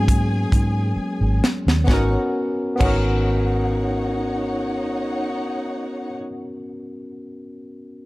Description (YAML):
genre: lush 1970s-style soul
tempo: 65 BPM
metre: 4/4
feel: swing 54% on 16ths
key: unclear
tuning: A4 = 440 Hz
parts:
  - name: warm symphonic string section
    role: second line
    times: 0.0-6.1 s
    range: D#4 to G#5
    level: -29 LUFS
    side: equal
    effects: none
  - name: barky tine electric piano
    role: accompaniment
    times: 0.0-8.1 s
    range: F#3 to A#4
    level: -25 LUFS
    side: left 1 dB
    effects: overdrive
  - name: vintage muted fingered electric bass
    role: bass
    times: 0.0-6.1 s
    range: G#1 to G#2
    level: -21 LUFS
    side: equal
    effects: none
  - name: tight funk drum kit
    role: drums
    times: 0.1-3.1 s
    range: crash cymbal, hi-hat, kick drum, snare drum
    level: -20 LUFS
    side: equal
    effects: none
room: studio reverb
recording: dark, warm production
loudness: -19 LUFS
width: side -20 dB against mid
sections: 0.0-1.9 A section; 1.9-5.6 B section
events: slowing down 0.0-1.9; tine electric piano solo 0.0-1.9; drum fill 1.0-1.9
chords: 0.0 G#m11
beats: 0.08 0.96 | 1.88 2.80 3.73 4.66